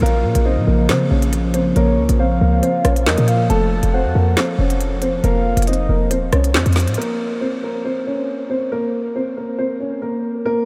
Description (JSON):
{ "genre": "hip hop, drill", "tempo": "138 BPM", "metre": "4/4", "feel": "half-time", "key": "Bb harmonic minor", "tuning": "A4 = 440 Hz", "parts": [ { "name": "dark concert grand piano", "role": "melody", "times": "0.0-10.7 s", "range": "A3 to Db5", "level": "-23 LUFS", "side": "equal", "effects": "analog delay" }, { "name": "soft octave-layered synth lead", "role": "second line", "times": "0.0-6.1 s", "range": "Db5 to A5", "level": "-28 LUFS", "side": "equal", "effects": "chorus, phaser, analog delay" }, { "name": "hollow soft pad", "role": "sustained chords", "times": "0.0-6.9 s", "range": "Db3 to Bb3", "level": "-26 LUFS", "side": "equal", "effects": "chorus" }, { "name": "short 808-style bass", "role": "bass", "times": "0.0-7.0 s", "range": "Eb1 to Db3", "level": "-19 LUFS", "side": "equal", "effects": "none" }, { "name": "drill drum kit", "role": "drums", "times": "0.1-7.1 s", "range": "handclaps, hi-hat, rim click, snare drum", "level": "-28 LUFS", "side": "equal", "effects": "none" } ], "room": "moderate huge ambient reverb, RT60 7.6 s", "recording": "dreamy mix soaked in reverb", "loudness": "-18 LUFS", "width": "mono", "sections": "0.0-7.0 A section; 7.0-10.7 B section", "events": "none", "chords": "0.0 Bbm; 3.5 F; 7.0 Bbmadd9" }